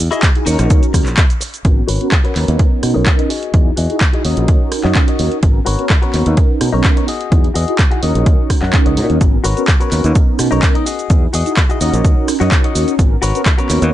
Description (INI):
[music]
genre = filtered disco house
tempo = 127 BPM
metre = 4/4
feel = straight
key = G# minor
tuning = A4 = 440 Hz
[part]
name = modern bright fingered electric bass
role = bass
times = 0.0-13.9 s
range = G#1 to B2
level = -16 LUFS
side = equal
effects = sidechain pumping, low-pass filter
[part]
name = mellow synth brass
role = accompaniment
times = 0.1-13.9 s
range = B3 to A#4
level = -20 LUFS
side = right 2 dB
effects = chorus, phaser, sidechain pumping, low-pass filter
[part]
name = direct-recorded clean electric guitar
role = riff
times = 0.1-13.9 s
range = D#4 to F#5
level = -22 LUFS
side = left 6 dB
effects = sidechain pumping, low-pass filter
[part]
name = punchy analog drum machine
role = drums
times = 0.1-13.9 s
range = handclaps, hi-hat, rim click, shaker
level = -20 LUFS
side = equal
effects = none
[part]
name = electronic kick drum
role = drums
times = 0.2-13.6 s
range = none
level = -12 LUFS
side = equal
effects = none
[sound]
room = little or no reverb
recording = nothing above 10.4 kHz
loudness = -11 LUFS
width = side -13 dB against mid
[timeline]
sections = 0.0-1.7 A section; 1.7-13.9 B section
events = drop 0.0-1.7; filter sweep 1.7-13.9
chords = 0.5 D#m7; 1.7 G#m11; 2.6 Bmaj9; 3.3 Emaj9; 4.2 D#m7; 5.4 G#m11; 6.4 Bmaj9; 7.1 Emaj9; 8.0 D#m7; 9.2 G#m11; 10.2 Bmaj9; 10.9 Emaj9; 11.8 D#m7; 13.0 G#m11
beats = 0.23 0.71 1.18 | 1.65 2.12 2.60 3.07 | 3.54 4.01 4.49 4.96 | 5.43 5.90 6.38 6.85 | 7.32 7.79 8.27 8.74 | 9.21 9.68 10.15 10.63 | 11.10 11.57 12.04 12.52 | 12.99 13.46 13.93